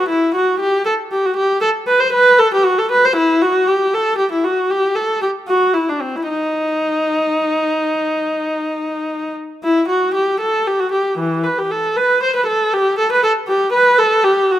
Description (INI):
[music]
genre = classical, baroque-style suite movement for unaccompanied viola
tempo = 70-80 BPM (dotted quarters)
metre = 12/8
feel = rubato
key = unclear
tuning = A4 = 440 Hz
[part]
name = warm viola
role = solo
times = 0.0-14.6 s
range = E3 to C5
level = -14 LUFS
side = equal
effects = none
[sound]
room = moderate recital hall reverb, RT60 1.8 s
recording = close, detailed microphones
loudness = -14 LUFS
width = side -12 dB against mid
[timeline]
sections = 0.0-9.6 A section; 9.6-14.6 A section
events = none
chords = none